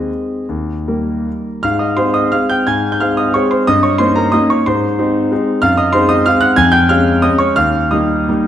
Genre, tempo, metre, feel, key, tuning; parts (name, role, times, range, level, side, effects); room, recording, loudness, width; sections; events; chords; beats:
classical, piano waltz; 148-196 BPM; 3/4; rubato; Ab major; A4 = 436 Hz
warm concert grand piano; solo; 0.0-8.5 s; Eb2 to Ab6; -12 LUFS; equal
wet recital hall reverb, RT60 1.8 s; -12 LUFS; side -10 dB against mid
0.0-1.6 A section; 1.6-8.5 B section
0.5 Eb; 1.6 Ab; 3.7 Eb7/G; 4.7 Ab; 5.6 Ab7/Gb; 6.6 Db/F; 7.6 Eb
0.08 | 0.48 0.87 1.27 | 1.64 1.98 2.33 | 2.67 3.00 3.34 | 3.67 4.00 4.34 | 4.67 4.98 5.31 | 5.63 5.95 6.27 | 6.58 6.90 7.24 | 7.57 7.92 8.28